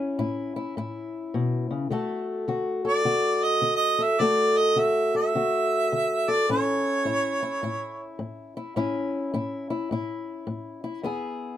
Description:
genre	acoustic country blues, solo or duo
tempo	105 BPM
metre	4/4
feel	swing 64% on 8ths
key	A major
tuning	A4 = 440 Hz
part	fingerpicked old ladder-braced acoustic guitar	accompaniment	0.0-11.6 s	E2 to A4	-26 LUFS	left 2 dB	none
part	warm harmonica	melody	2.9-8.2 s	C#5 to E5	-24 LUFS	right 2 dB	none
room	moderate booth ambience, RT60 0.2 s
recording	none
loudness	-23 LUFS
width	side -11 dB against mid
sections	0.0-11.6 A section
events	none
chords	0.0 A; 1.9 D; 6.5 A; 11.0 E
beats	0.20 0.77 1.34 | 1.91 2.48 3.06 3.63 | 4.20 4.77 5.34 5.91 | 6.48 7.05 7.62 8.19 | 8.76 9.33 9.90 10.48 | 11.05

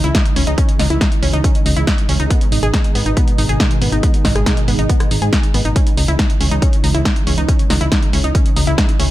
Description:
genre	uplifting trance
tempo	139 BPM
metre	4/4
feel	straight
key	C# minor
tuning	A4 = 439 Hz
part	analog string pad	sustained chords	0.0-9.1 s	B2 to D#4	-23 LUFS	right 2 dB	ensemble chorus, sidechain pumping
part	wide unison pluck	arpeggios	0.0-9.1 s	B3 to G#4	-22 LUFS	equal	sidechain pumping, digital delay
part	solid FM bass	bass	0.0-9.1 s	G#1 to G#2	-17 LUFS	equal	sidechain pumping
part	punchy analog drum machine	drums	0.0-9.1 s	hi-hat, rim click, snare drum	-21 LUFS	equal	none
part	electronic kick drum	drums	0.1-8.9 s	none	-16 LUFS	equal	none
room	little or no reverb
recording	none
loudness	-13 LUFS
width	side -15 dB against mid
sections	0.0-9.1 A section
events	none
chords	0.0 C#madd9; 2.3 G#m; 5.8 C#madd9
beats	0.15 | 0.58 1.01 1.44 1.87 | 2.31 2.74 3.17 3.60 | 4.03 4.46 4.90 5.33 | 5.76 6.19 6.62 7.05 | 7.49 7.92 8.35 8.78

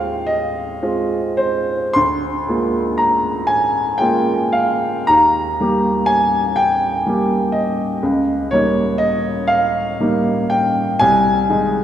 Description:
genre	classical, romantic nocturne for solo piano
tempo	34-42 BPM (dotted quarters)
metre	12/8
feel	rubato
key	Eb major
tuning	A4 = 441 Hz
part	warm upright piano	solo	0.0-11.8 s	C2 to C6	-15 LUFS	equal	none
room	wet church reverb, RT60 3.5 s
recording	recorded in a church or concert hall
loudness	-15 LUFS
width	side -10 dB against mid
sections	0.0-11.8 A section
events	none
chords	0.0 Fm7/Eb; 2.0 Bb7/D; 5.1 Eb; 8.0 Eb7/Db; 11.0 Ab/C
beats	0.29 | 1.96 3.47 5.06 6.56 | 8.02 9.50 11.00

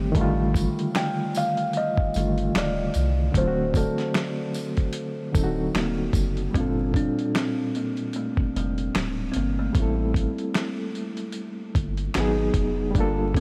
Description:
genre	lo-fi hip hop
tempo	75 BPM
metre	4/4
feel	swing 56% on 16ths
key	G dorian from 6.6 s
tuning	A4 = 441 Hz
part	overdriven reed electric piano	accompaniment	0.0-13.4 s	Bb2 to A4	-30 LUFS	equal	fast tremolo, cassette tape, low-pass filter
part	soft dub sub bass	bass	0.0-13.4 s	D1 to C2	-30 LUFS	equal	none
part	dusty soul sampler-style drum kit	drums	0.1-13.4 s	finger snaps, hi-hat, kick drum, snare drum	-29 LUFS	equal	overdrive
part	tambourine	percussion	0.6-6.4 s	none	-48 LUFS	equal	none
part	kalimba	melody	1.0-13.4 s	G3 to G5	-31 LUFS	equal	low-pass filter, tape echo
room	light reverb, digital ambience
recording	vinyl crackle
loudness	-25 LUFS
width	mono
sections	0.0-6.6 A section; 6.6-13.4 B section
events	none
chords	0.2 F13/A; 3.4 D7; 6.6 Gm9; 9.8 Am7; 12.2 Abm7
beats	| 0.15 0.95 1.75 2.55 | 3.35 4.15 4.95 5.75 | 6.55 7.35 8.15 8.95 | 9.75 10.55 11.35 12.15 | 12.95

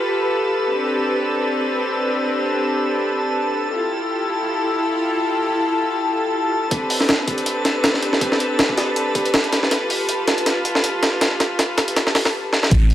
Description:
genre	drum and bass, jungle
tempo	160 BPM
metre	4/4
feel	swing 55% on 16ths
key	A minor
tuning	A4 = 440 Hz
part	clear studio string section	sustained chords	0.0-12.7 s	C4 to B4	-21 LUFS	equal	none
part	drifting glass-harmonics texture	texture	0.0-12.3 s	A4 to A5	-26 LUFS	left 2 dB	chorus, built-in reverb
part	breakbeat sampler-style drum kit	drums	6.7-12.9 s	hi-hat, kick drum, snare drum	-18 LUFS	equal	high-pass filter on hats, small room ambience, high-pass filter on kick, high-pass filter on snare
part	saturated sub bass	bass	12.7-12.9 s	A1	-14 LUFS	equal	none
part	downlifter	sound effects	12.7-12.9 s	none	-32 LUFS	right 1 dB	none
room	moderate lush hall reverb, RT60 1.9 s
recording	vinyl crackle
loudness	-17 LUFS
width	side -12 dB against mid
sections	0.0-6.7 A section; 6.7-12.7 B section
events	build-up 6.7-12.7; drum fill 9.7-12.3, 12.5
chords	0.0 G9; 0.7 Am11; 3.7 Fmaj9; 6.7 Am11; 9.7 G9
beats	0.34 | 0.71 1.09 1.46 1.84 | 2.21 2.59 2.96 3.34 | 3.71 4.09 4.46 4.84 | 5.21 5.59 5.96 6.34 | 6.71 7.09 7.46 7.84 | 8.21 8.59 8.96 9.34 | 9.71 10.09 10.46 10.84 | 11.21 11.59 11.96 12.34 | 12.71

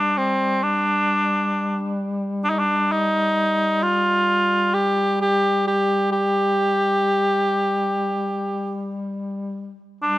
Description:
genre	caucasian folk, Caucasian lament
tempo	58-68 BPM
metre	4/4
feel	rubato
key	unclear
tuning	A4 = 445 Hz
part	warm cor anglais	melody	0.0-10.2 s	C4 to G4	-19 LUFS	equal	none
part	mellow duduk	drone	0.0-10.2 s	G3	-26 LUFS	left 1 dB	none
room	light reverb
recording	close, detailed microphones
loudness	-19 LUFS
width	side -16 dB against mid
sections	0.0-10.0 A section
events	none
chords	none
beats	0.65 1.55 | 2.44 3.35 4.26 5.18 | 6.12 7.06 8.02 9.03 | 10.01

